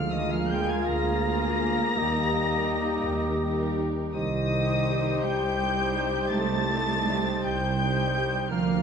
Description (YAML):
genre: classical, slow romantic movement for symphony orchestra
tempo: 55 BPM (dotted quarters)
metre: 12/8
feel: rubato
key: unclear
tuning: A4 = 441 Hz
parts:
  - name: muted studio violin section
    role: melody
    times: 0.0-8.8 s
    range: Eb6 to Bb6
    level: -32 LUFS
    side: left 3 dB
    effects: none
  - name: dark clarinet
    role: second line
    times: 0.0-8.8 s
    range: F4 to Ab4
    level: -34 LUFS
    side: left 2 dB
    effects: none
  - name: mellow cor anglais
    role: second line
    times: 0.0-8.8 s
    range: Bb4 to F5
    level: -36 LUFS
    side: right 1 dB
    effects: none
  - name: silver concert flute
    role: second line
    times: 0.0-8.8 s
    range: Eb5 to Bb5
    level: -32 LUFS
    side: left 2 dB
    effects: none
  - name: dark French horn section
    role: sustained chords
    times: 0.0-8.3 s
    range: G3 to G4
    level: -36 LUFS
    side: left 5 dB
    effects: none
  - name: dark tuba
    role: bass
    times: 0.0-8.8 s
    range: C2 to Eb2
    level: -32 LUFS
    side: right 3 dB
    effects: none
  - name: muted studio cello section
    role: bass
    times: 0.0-8.8 s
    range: Eb3 to Bb3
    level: -32 LUFS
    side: right 1 dB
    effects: none
  - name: muted studio double bass section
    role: bass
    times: 0.0-8.8 s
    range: C2 to Eb2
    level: -33 LUFS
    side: right 3 dB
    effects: none
  - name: muted studio violin section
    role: second line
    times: 0.1-8.8 s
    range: F4 to C5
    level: -36 LUFS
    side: left 2 dB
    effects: none
  - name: muted studio viola section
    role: accompaniment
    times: 0.1-8.8 s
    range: G3 to F4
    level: -35 LUFS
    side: right 1 dB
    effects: none
room: wet recital hall reverb, RT60 1.5 s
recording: none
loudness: -24 LUFS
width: side -6 dB against mid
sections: 0.0-8.8 A section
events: none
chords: 0.0 Bb7/D; 2.0 Eb; 4.1 Cm